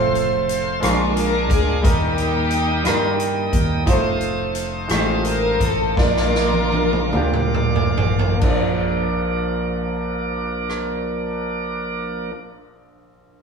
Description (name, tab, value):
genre	slow gospel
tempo	44-59 BPM (dotted quarters)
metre	6/8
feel	straight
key	Bb major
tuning	A4 = 444 Hz
part	bright upright piano	accompaniment	0.0-13.4 s	Bb1 to D5	-24 LUFS	right 1 dB	none
part	bright tonewheel organ	sustained chords	0.0-12.3 s	F3 to Eb6	-25 LUFS	right 2 dB	slow rotary speaker
part	fingered electric bass	bass	0.0-12.3 s	F1 to G2	-25 LUFS	equal	none
part	swinging big-band drum kit	drums	0.2-10.9 s	crash cymbal, hi-hat, kick drum, rim click, snare drum, toms	-22 LUFS	equal	none
part	warm studio string section	melody	0.8-7.5 s	Ab3 to Bb4	-22 LUFS	left 2 dB	none
room	wet stone room reverb, RT60 1.4 s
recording	band playing live in one room, studio reverb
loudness	-18 LUFS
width	side -5 dB against mid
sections	0.0-8.4 A section; 8.4-13.4 B section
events	slowing down 3.9-8.4; drum fill 6.0-8.4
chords	0.0 F; 0.8 Bb7; 1.8 Eb; 3.9 F7; 6.0 Bb